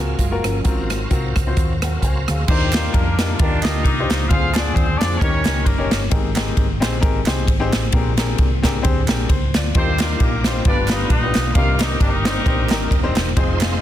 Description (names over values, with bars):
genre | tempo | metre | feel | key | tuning
uptempo gospel | 132 BPM | 4/4 | swing 56% on 8ths | Eb major | A4 = 440 Hz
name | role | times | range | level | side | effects
mellow electric guitar | second line | 0.0-0.9 s | F3 to Ab4 | -30 LUFS | right 8 dB | none
clear baby grand piano | accompaniment | 0.0-13.8 s | G2 to Ab5 | -25 LUFS | left 5 dB | none
bright tonewheel organ | sustained chords | 0.0-2.4, 9.8-13.8 s | D3 to F5 | -30 LUFS | right 4 dB | slow rotary speaker, overdrive, chorus vibrato
hollow-body short-scale fingered electric bass | bass | 0.0-13.8 s | Eb1 to F2 | -22 LUFS | equal | none
swinging big-band drum kit | drums | 0.2-13.7 s | crash cymbal, hi-hat, kick drum, ride cymbal, rim click, snare drum | -18 LUFS | equal | none
clear horn section | melody | 2.5-6.1, 9.8-13.1 s | Bb3 to F5 | -23 LUFS | equal | none
group handclap | percussion | 2.7-13.7 s | none | -31 LUFS | right 6 dB | none
room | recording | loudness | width
small room reverb | dense, heavily limited modern master | -16 LUFS | side -12 dB against mid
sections
0.0-2.5 A section; 2.5-13.8 B section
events
none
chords
0.0 Gbmaj9; 0.7 Ab13; 2.5 Ebmaj9; 4.3 Dm7b5; 5.2 Eb7; 6.1 Abmaj9; 7.9 Bb13; 9.7 Ebmaj9; 10.6 G7; 11.6 Cm9